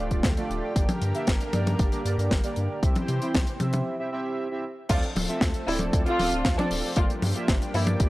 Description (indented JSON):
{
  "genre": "italo disco",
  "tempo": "116 BPM",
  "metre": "4/4",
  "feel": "straight",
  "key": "D minor",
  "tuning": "A4 = 442 Hz",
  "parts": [
    { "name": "lush unison pad", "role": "sustained chords", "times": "0.0-8.1 s", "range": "D3 to C5", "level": "-34 LUFS", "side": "equal", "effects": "chorus" },
    { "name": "analog synth brass", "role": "stabs", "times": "0.0-8.1 s", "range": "F3 to G5", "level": "-31 LUFS", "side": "right 2 dB", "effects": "chorus, cassette tape" },
    { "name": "round analog bass", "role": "bass", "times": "0.0-8.1 s", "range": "D1 to C3", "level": "-29 LUFS", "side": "equal", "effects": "none" },
    { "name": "electronic kick drum", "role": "drums", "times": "0.1-8.1 s", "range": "none", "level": "-25 LUFS", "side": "equal", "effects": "overdrive" },
    { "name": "tight funk drum kit", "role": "drums", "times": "0.1-8.1 s", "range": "crash cymbal, hi-hat, snare drum, toms", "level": "-28 LUFS", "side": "left 1 dB", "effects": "none" },
    { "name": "dark studio violin section", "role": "melody", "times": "4.9-7.8 s", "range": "D4 to F4", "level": "-29 LUFS", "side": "equal", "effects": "analog delay" }
  ],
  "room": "light reverb, studio reverb",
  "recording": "dry, gritty hardware recording, cassette tape",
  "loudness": "-23 LUFS",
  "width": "side -18 dB against mid",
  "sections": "0.0-4.9 A section; 4.9-8.1 B section",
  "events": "break 3.9-4.9",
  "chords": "0.0 Dm; 0.8 Gm; 2.8 C; 4.9 Dm7; 7.0 Gm7",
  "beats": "0.24 | 0.76 1.28 1.79 2.31 | 2.83 3.35 3.86 4.38 | 4.90 5.41 5.93 6.45 | 6.97 7.48 8.00"
}